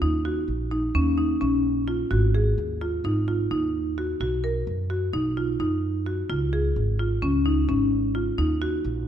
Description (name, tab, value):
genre	contemporary instrumental, chamber music in an uneven meter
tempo	258 BPM (eighths)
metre	9/8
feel	straight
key	Db mixolydian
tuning	A4 = 441 Hz
part	marimba with hard mallets	arpeggios	0.0-8.9 s	Db4 to Bb4	-25 LUFS	equal	none
part	upright bass	bass	0.0-9.1 s	Ab1 to Gb2	-26 LUFS	right 1 dB	none
room	moderate scoring stage reverb, RT60 1.6 s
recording	dark, warm production, faint mains hum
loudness	-22 LUFS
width	side -10 dB against mid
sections	0.0-9.1 A section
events	none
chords	0.0 Ebm7; 2.1 Ab5; 4.2 Cbmaj7; 6.3 Db; 8.4 Ebm